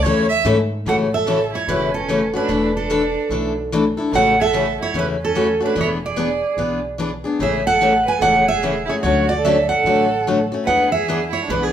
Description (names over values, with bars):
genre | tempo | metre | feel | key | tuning
acoustic string swing (jazz manouche) | 147 BPM | 4/4 | swing 62% on 8ths | A major | A4 = 439 Hz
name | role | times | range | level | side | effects
rich violin | second line | 0.0-11.7 s | B3 to E5 | -24 LUFS | right 5 dB | none
picked steel-string acoustic guitar | accompaniment | 0.0-11.7 s | C#3 to A4 | -20 LUFS | left 3 dB | none
upright bass | bass | 0.0-11.7 s | E1 to G#2 | -28 LUFS | equal | none
picked steel-string acoustic guitar | melody | 0.9-11.7 s | G#4 to G#5 | -19 LUFS | right 2 dB | none
room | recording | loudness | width
wet large studio reverb, RT60 0.8 s | band playing live in one room | -16 LUFS | side -10 dB against mid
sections
0.9-11.7 A section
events
none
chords
0.0 A; 0.9 A6; 2.5 E7sus4; 4.1 A6; 5.8 E7; 7.4 Amaj7; 9.0 Dmaj7; 10.7 E7